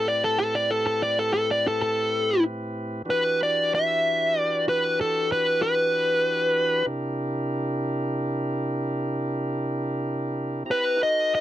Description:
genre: blues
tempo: 63 BPM (dotted quarters)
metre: 12/8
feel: straight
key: E minor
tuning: A4 = 440 Hz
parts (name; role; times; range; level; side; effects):
- dark smooth lead guitar; melody; 0.0-11.4 s; A4 to E5; -21 LUFS; equal; overdrive
- tonewheel organ; sustained chords; 0.0-11.4 s; A2 to A#5; -28 LUFS; right 1 dB; stopped rotary speaker
room: moderate booth ambience, RT60 0.2 s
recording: dry, close 1970s-style studio recording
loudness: -22 LUFS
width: side -13 dB against mid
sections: 0.0-11.4 A section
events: none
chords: 0.0 Am7; 3.1 Em7; 6.9 C7; 10.7 B7

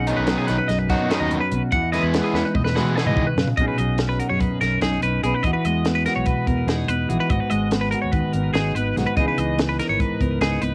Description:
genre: math rock and midwest emo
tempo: 290 BPM (eighths)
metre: 9/8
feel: straight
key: B major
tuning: A4 = 440 Hz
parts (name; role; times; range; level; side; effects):
- mellow electric guitar; accompaniment; 0.0-10.7 s; F#2 to B4; -26 LUFS; equal; spring reverb
- twelve-string electric guitar; arpeggios; 0.0-10.7 s; F#4 to F#5; -28 LUFS; equal; tape echo
- fingered electric bass; bass; 0.0-10.7 s; G#1 to E3; -29 LUFS; equal; none
- crunchy overdriven guitar; riff; 0.1-3.2 s; D#3 to E4; -27 LUFS; equal; none
- compact cocktail drum kit; drums; 0.1-10.7 s; hi-hat, kick drum, snare drum, toms; -28 LUFS; equal; cassette tape
room: little or no reverb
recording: home recording on cassette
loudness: -21 LUFS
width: mono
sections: 0.0-3.6 A section; 3.6-10.7 B section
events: drum fill 2.3-3.6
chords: 0.0 B69; 1.7 Emaj9; 3.6 B69; 5.4 Emaj9#11; 7.3 G#m9; 9.2 C#m9

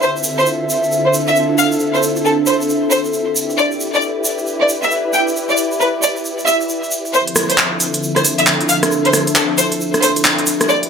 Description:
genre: UK garage, two-step garage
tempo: 135 BPM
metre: 4/4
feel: swing 63% on 16ths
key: D dorian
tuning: A4 = 440 Hz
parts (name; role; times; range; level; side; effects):
- warm studio violin section; melody; 0.0-10.8 s; A4 to G5; -17 LUFS; equal; digital delay
- soft string machine; sustained chords; 0.0-10.9 s; D3 to D5; -23 LUFS; equal; ensemble chorus
- egg shaker; percussion; 0.0-10.8 s; none; -22 LUFS; right 1 dB; none
- warbly tape-like pad; texture; 0.0-10.9 s; D4 to E5; -19 LUFS; equal; chorus, built-in reverb, phaser
- garage drum kit; drums; 0.2-10.9 s; handclaps, hi-hat, rim click; -15 LUFS; equal; low-pass filter on hats, low-pass filter on snare, low-pass filter on room
room: moderate plate reverb, RT60 1.8 s, digital ambience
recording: high-pass filter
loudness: -13 LUFS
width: side -6 dB against mid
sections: 0.0-7.1 A section; 7.1-10.9 B section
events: build-up 7.1-10.9; filter sweep on string machine 7.1-10.9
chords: 0.0 Dm9; 3.4 Em7; 7.1 Dm9

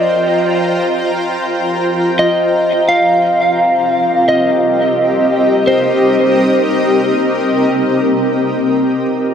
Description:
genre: ambient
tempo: free time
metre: none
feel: none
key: C minor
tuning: A4 = 439 Hz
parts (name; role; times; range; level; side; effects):
- electric slide guitar; melody; 0.0-6.7 s; C5 to F5; -14 LUFS; equal; dub echo
- granular cloud pad; sustained chords; 0.0-9.3 s; C4 to Bb5; -14 LUFS; left 1 dB; built-in reverb
room: wet concert hall reverb, RT60 2.1 s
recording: dark, warm production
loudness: -11 LUFS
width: side -8 dB against mid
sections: 0.0-9.3 A section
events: none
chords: 0.0 F7sus4; 2.9 Cm7

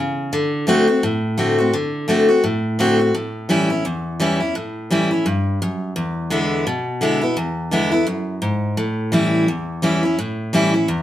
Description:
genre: rock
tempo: 170 BPM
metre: 4/4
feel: swing 59% on 8ths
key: A mixolydian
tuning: A4 = 440 Hz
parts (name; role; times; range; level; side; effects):
- picked steel-string acoustic guitar; solo; 0.0-11.0 s; E2 to F#4; -17 LUFS; equal; none
room: moderate studio reverb, RT60 0.8 s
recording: band playing live in one room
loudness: -17 LUFS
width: side -12 dB against mid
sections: 0.0-11.0 A section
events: none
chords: 0.3 D7; 3.1 A7; 6.0 E7; 8.8 A7

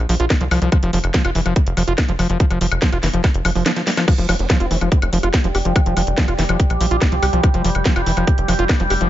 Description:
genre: psychedelic trance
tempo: 143 BPM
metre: 4/4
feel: straight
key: unclear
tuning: A4 = 440 Hz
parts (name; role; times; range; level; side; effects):
- tight sequencer bass; bass; 0.0-9.1 s; F1 to C2; -20 LUFS; equal; none
- overdriven acid bass; riff; 0.1-9.1 s; E3 to G4; -22 LUFS; equal; distortion, auto-pan, sidechain pumping, dub echo
- garage drum kit; drums; 0.1-9.1 s; crash cymbal, hi-hat, snare drum, woodblock; -23 LUFS; left 1 dB; none
- electronic kick drum; drums; 0.3-8.8 s; none; -16 LUFS; equal; none
- overtone-sweeping drone; sustained chords; 5.1-9.1 s; G3 to G4; -24 LUFS; right 2 dB; chorus, built-in reverb, sidechain pumping
- vowel-sweep wobble bass; second line; 4.3-4.8 s; C4; -31 LUFS; right 3 dB; wide subtle chorus, sidechain pumping, high-pass filter, ping-pong delay
room: digital ambience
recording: nothing above 7.6 kHz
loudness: -15 LUFS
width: side -13 dB against mid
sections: 0.0-9.1 A section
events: drum fill 3.8-4.1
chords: 0.0 F5

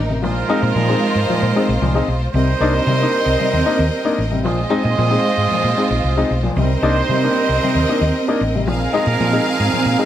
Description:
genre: disco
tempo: 114 BPM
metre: 4/4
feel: straight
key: unclear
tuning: A4 = 440 Hz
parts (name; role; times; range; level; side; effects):
- clear studio string section; second line; 0.0-10.1 s; G3 to F5; -20 LUFS; right 1 dB; none
- hollow-body short-scale fingered electric bass; bass; 0.0-9.9 s; A1 to C3; -19 LUFS; equal; none
- dark baby grand piano; accompaniment; 0.1-10.1 s; Bb2 to Eb4; -20 LUFS; left 4 dB; none
- clear horn section; stabs; 0.2-10.1 s; F3 to Eb5; -22 LUFS; right 6 dB; tape echo
room: light reverb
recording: none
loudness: -15 LUFS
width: side -11 dB against mid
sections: 0.0-10.1 A section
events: none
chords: 0.2 Bb9sus4; 2.3 Cm7; 4.4 Bb9sus4; 6.6 Cm7; 8.7 Bb9sus4

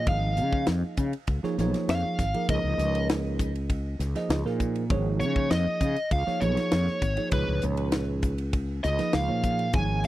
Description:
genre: electric jazz fusion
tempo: 99 BPM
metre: 4/4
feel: straight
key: Db mixolydian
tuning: A4 = 440 Hz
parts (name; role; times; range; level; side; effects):
- bluesy overdriven lead guitar; melody; 0.0-10.1 s; Cb5 to Ab5; -30 LUFS; equal; distortion, tape echo
- fretless electric bass; bass; 0.0-10.1 s; Ab1 to Db3; -27 LUFS; equal; wide subtle chorus
- bell-like tine electric piano; accompaniment; 0.1-10.1 s; Bb2 to Eb5; -31 LUFS; right 3 dB; phaser
- crisp fusion drum kit; drums; 0.1-10.1 s; hi-hat, kick drum, ride cymbal, snare drum; -28 LUFS; left 1 dB; none
room: little or no reverb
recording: dry, close 1970s-style studio recording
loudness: -24 LUFS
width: side -15 dB against mid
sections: 0.0-10.1 A section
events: lead electric guitar solo 0.0-10.1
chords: 0.0 Db69

